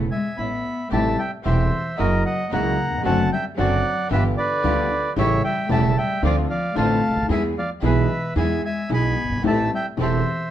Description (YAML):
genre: tango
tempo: 112 BPM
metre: 4/4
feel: rubato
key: A minor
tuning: A4 = 439 Hz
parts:
  - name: warm cello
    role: second line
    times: 0.0-10.5 s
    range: D3 to B3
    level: -28 LUFS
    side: left 3 dB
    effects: none
  - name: warm concert grand piano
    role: accompaniment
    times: 0.0-10.2 s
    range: E1 to G#4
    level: -25 LUFS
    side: left 2 dB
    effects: none
  - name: warm studio string section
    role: stabs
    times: 0.0-10.2 s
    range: A3 to A4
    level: -31 LUFS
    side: right 2 dB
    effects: none
  - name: upright bass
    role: bass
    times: 0.0-10.2 s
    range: E1 to E2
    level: -24 LUFS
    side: right 3 dB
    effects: none
  - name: bandoneon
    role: melody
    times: 0.1-10.5 s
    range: A#4 to B5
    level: -24 LUFS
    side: right 1 dB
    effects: none
room: moderate club reverb, RT60 0.8 s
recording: minimal, uncompressed stereo recording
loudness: -19 LUFS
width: side -11 dB against mid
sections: 0.9-10.5 A section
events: none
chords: 0.0 A; 0.9 Am7; 2.0 F#7; 3.1 D7/F#; 4.1 G7; 5.2 A7; 6.2 Dm7; 7.3 E; 9.4 Am7